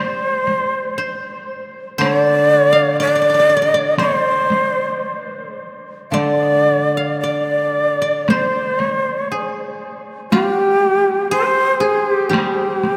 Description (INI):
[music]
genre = japanese traditional, Japanese chamber music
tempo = 53-61 BPM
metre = 2/4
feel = rubato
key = unclear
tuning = A4 = 440 Hz
[part]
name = breathy shakuhachi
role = melody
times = 0.0-13.0 s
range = G4 to F5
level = -18 LUFS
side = equal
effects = none
[part]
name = koto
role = second line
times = 0.0-13.0 s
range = G4 to F5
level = -27 LUFS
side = equal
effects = none
[part]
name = koto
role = accompaniment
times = 0.0-13.0 s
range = D3 to G3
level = -26 LUFS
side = equal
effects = none
[part]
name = taiko ensemble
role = percussion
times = 0.5-13.0 s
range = none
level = -26 LUFS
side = equal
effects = none
[sound]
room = wet cathedral reverb, RT60 5.3 s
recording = in a vast, echoing space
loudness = -17 LUFS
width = mono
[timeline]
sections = 0.0-13.0 A section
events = none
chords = none